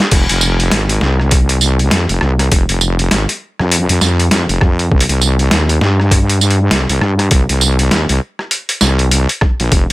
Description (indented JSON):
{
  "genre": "glitch hop",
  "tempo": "100 BPM",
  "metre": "4/4",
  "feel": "swing 60% on 16ths",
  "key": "unclear",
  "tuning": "A4 = 441 Hz",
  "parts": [
    { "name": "boom bap sampler-style drum kit", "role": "drums", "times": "0.0-9.9 s", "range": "crash cymbal, hi-hat, rim click, snare drum, tambourine", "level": "-15 LUFS", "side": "equal", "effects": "overdrive" },
    { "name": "wobble bass", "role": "bass", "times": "0.1-9.9 s", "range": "F1 to G2", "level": "-13 LUFS", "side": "equal", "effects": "chorus, overdrive" },
    { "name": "electronic kick drum", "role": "drums", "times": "0.1-9.9 s", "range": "none", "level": "-12 LUFS", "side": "equal", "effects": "overdrive" }
  ],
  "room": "little or no reverb",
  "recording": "none",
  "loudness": "-11 LUFS",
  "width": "side -19 dB against mid",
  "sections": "0.0-9.9 A section",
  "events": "none",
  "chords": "none",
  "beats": "| 0.12 0.72 1.32 1.92 | 2.52 3.12 3.72 4.32 | 4.92 5.52 6.12 6.72 | 7.32 7.92 8.52 9.12 | 9.72"
}